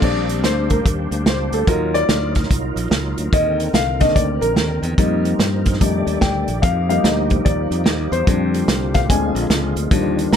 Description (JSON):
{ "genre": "uptempo gospel", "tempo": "146 BPM", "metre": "4/4", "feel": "swing 64% on 8ths", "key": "Bb major", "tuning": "A4 = 440 Hz", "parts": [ { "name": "warm baby grand piano", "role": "accompaniment", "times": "0.0-10.4 s", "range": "Eb3 to Bb5", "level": "-20 LUFS", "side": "left 3 dB", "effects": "none" }, { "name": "bright tonewheel organ", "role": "sustained chords", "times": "0.0-10.4 s", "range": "D3 to D5", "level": "-27 LUFS", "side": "right 3 dB", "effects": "fast rotary speaker, chorus vibrato" }, { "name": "dark French horn section", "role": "sustained chords", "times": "0.0-10.4 s", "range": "C3 to D5", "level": "-31 LUFS", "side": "right 1 dB", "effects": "none" }, { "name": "modern bright fingered electric bass", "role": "bass", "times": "0.0-10.4 s", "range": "Bb1 to G2", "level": "-22 LUFS", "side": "equal", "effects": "none" }, { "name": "warm soul drum kit", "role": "drums", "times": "0.0-10.4 s", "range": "crash cymbal, hi-hat, kick drum, snare drum", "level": "-19 LUFS", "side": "right 1 dB", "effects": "none" } ], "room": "light reverb", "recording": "none", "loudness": "-16 LUFS", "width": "side -8 dB against mid", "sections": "0.0-10.4 A section", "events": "grand piano solo 0.0-10.4", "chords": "0.0 Bb69; 1.7 Ebmadd9; 3.3 Cm9; 5.0 F7sus4; 5.8 F13; 6.6 F9sus4; 8.3 Bb69/F; 9.1 Bb7" }